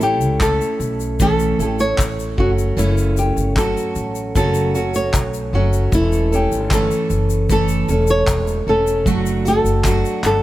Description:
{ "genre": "acoustic pop", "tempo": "76 BPM", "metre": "4/4", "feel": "straight", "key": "A mixolydian", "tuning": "A4 = 440 Hz", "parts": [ { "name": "flamenco guitar", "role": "melody", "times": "0.0-10.4 s", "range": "E4 to C#5", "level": "-21 LUFS", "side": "left 1 dB", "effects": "none" }, { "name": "picked steel-string acoustic guitar", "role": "accompaniment", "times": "0.0-10.4 s", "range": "F#2 to A4", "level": "-20 LUFS", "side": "right 2 dB", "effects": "none" }, { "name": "upright bass", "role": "bass", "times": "0.0-10.4 s", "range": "E1 to C#2", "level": "-20 LUFS", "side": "equal", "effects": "none" }, { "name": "tube shaker", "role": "percussion", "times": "0.0-10.4 s", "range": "none", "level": "-33 LUFS", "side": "left 11 dB", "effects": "none" }, { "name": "modern studio drum kit", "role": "drums", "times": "0.4-10.4 s", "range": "handclaps, kick drum, tambourine", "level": "-21 LUFS", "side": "equal", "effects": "none" } ], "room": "little or no reverb", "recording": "none", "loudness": "-15 LUFS", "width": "side -15 dB against mid", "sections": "0.0-10.4 A section", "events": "none", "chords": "0.0 A; 2.4 F#m; 5.9 A/E; 9.1 D/F#", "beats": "0.41 1.20 1.99 | 2.77 3.56 4.35 5.14 | 5.92 6.71 7.49 8.28 | 9.06 9.85" }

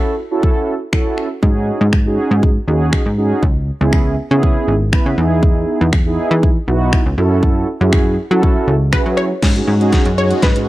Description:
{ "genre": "dance-pop", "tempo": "120 BPM", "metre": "4/4", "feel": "straight", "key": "unclear", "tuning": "A4 = 440 Hz", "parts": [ { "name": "mellow synth brass", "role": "accompaniment", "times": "0.0-10.7 s", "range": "B3 to B4", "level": "-18 LUFS", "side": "right 2 dB", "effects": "chorus, sidechain pumping" }, { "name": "pop drum kit", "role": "drums", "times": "0.4-10.7 s", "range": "crash cymbal, finger snaps, hi-hat, kick drum, snare drum", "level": "-15 LUFS", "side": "equal", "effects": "none" }, { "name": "plucky analog bass", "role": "bass", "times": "1.4-10.7 s", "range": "G#1 to F#3", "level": "-16 LUFS", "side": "equal", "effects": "sidechain pumping" }, { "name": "wide unison pluck", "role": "melody", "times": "8.9-10.7 s", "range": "B4 to C#5", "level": "-21 LUFS", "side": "left 1 dB", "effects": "none" }, { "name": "supersaw chords", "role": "sustained chords", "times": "9.4-10.7 s", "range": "G#3 to F#4", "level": "-25 LUFS", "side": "left 1 dB", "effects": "sidechain pumping" } ], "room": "little or no reverb", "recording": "dry, close 1970s-style studio recording", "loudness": "-12 LUFS", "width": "side -16 dB against mid", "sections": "0.0-9.4 A section; 9.4-10.7 B section", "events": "build-up 9.4-10.7; drum fill 9.4-10.7", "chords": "0.0 F#m7; 1.4 G#7sus4; 3.4 C#m7; 5.2 Emaj7; 7.2 F#m7; 9.4 G#7sus4", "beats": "0.43 0.93 | 1.43 1.93 2.43 2.93 | 3.43 3.93 4.43 4.93 | 5.43 5.93 6.43 6.93 | 7.43 7.93 8.43 8.93 | 9.43 9.93 10.43" }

